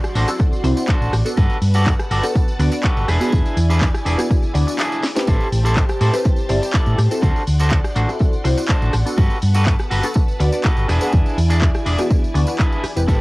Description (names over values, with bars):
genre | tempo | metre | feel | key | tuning
filtered disco house | 123 BPM | 4/4 | straight | unclear | A4 = 440 Hz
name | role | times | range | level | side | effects
string machine, full ensemble | sustained chords | 0.0-13.2 s | E4 to C6 | -29 LUFS | equal | ensemble chorus, vintage 12-bit sampler grit, sidechain pumping, cassette tape
house drum kit | drums | 0.0-13.2 s | handclaps, hi-hat, rim click, snare drum, tambourine | -27 LUFS | equal | overdrive, cassette tape, sidechain pumping on perc, sidechain pumping on hats
tambourine | percussion | 0.0-13.2 s | none | -36 LUFS | right 1 dB | sidechain pumping on perc
electric guitar at the edge of break-up | riff | 0.2-13.2 s | C4 to D5 | -24 LUFS | equal | sidechain pumping, cassette tape
hollow-body short-scale fingered electric bass | bass | 0.2-13.2 s | E1 to A2 | -18 LUFS | equal | sidechain pumping
funky polysynth comp | accompaniment | 0.3-13.2 s | B3 to D5 | -24 LUFS | equal | chorus, phaser, vintage 12-bit sampler grit, sidechain pumping, cassette tape
electronic kick drum | drums | 0.4-13.2 s | none | -16 LUFS | equal | overdrive, cassette tape
room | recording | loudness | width
little or no reverb | home recording on cassette | -15 LUFS | side -21 dB against mid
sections
0.0-13.2 A section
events
break 4.8-5.3; drum fill 5.0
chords
0.0 D7; 1.4 Gmaj9; 3.1 E7; 5.3 Am7; 7.2 D7; 9.2 Gmaj9; 10.9 E7